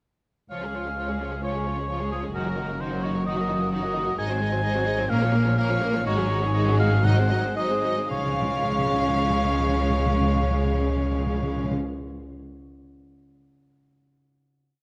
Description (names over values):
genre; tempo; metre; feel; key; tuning
classical, dramatic, fast romantic movement for symphony orchestra; 109-132 BPM; 4/4; rubato; Db major; A4 = 441 Hz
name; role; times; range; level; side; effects
warm symphonic violin section; melody; 0.5-11.7 s; Gb4 to F5; -35 LUFS; equal; none
warm oboe; second line; 0.5-11.7 s; Ab4 to Ab5; -31 LUFS; equal; none
warm symphonic violin section; second line; 0.5-11.7 s; Bb3 to Gb4; -38 LUFS; equal; none
rich symphonic viola section; accompaniment; 0.5-11.7 s; Eb3 to Bb3; -34 LUFS; equal; none
concert harp; arpeggios; 0.5-12.0 s; Gb2 to F5; -36 LUFS; equal; none
dark symphonic cello section; bass; 0.5-11.7 s; Db2 to Db3; -31 LUFS; equal; none
rich symphonic double bass section; bass; 0.5-11.7 s; Gb1 to Db2; -32 LUFS; equal; none
timpani; percussion; 7.0-11.8 s; Ab2 to Db3; -32 LUFS; equal; none
room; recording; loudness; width
moderate scoring stage reverb, RT60 1.8 s; none; -24 LUFS; mono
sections
0.5-8.1 A section; 8.1-12.2 final chord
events
slowing down 3.3-8.1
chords
0.5 Db; 2.3 Ebm/Gb; 4.2 Ab7; 5.1 Bbm; 6.1 Ab7sus4; 7.0 Ab7; 8.1 Db